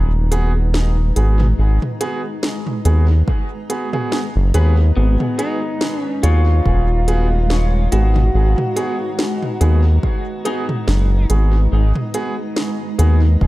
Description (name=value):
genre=ambient dub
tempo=71 BPM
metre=4/4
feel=swing 56% on 16ths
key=G# dorian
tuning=A4 = 444 Hz
part: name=granular cloud pad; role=sustained chords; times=0.0-13.5 s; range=G#3 to A#5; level=-27 LUFS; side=left 1 dB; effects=built-in reverb
part: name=Celtic harp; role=arpeggios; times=0.0-13.3 s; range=D#4 to C#5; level=-34 LUFS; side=left 5 dB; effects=dub echo
part: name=round analog bass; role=bass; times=0.0-13.5 s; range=D#1 to D#2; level=-13 LUFS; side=equal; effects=tube saturation
part: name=dark upright piano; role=stabs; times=0.3-13.2 s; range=B3 to G#4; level=-26 LUFS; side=right 2 dB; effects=dub echo
part: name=organic electronic drum kit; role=drums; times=0.3-13.2 s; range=hi-hat, snare drum, toms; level=-25 LUFS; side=equal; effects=overdrive, studio reverb, dub echo
part: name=electronic kick drum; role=drums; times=3.3-13.5 s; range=none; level=-19 LUFS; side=equal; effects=studio reverb
part: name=electric slide guitar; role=melody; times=5.0-11.3 s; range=B3 to F#4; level=-24 LUFS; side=equal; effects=dub echo
room=digital ambience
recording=echo-heavy mix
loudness=-14 LUFS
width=side -18 dB against mid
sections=0.0-13.5 A section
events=none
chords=0.0 G#m7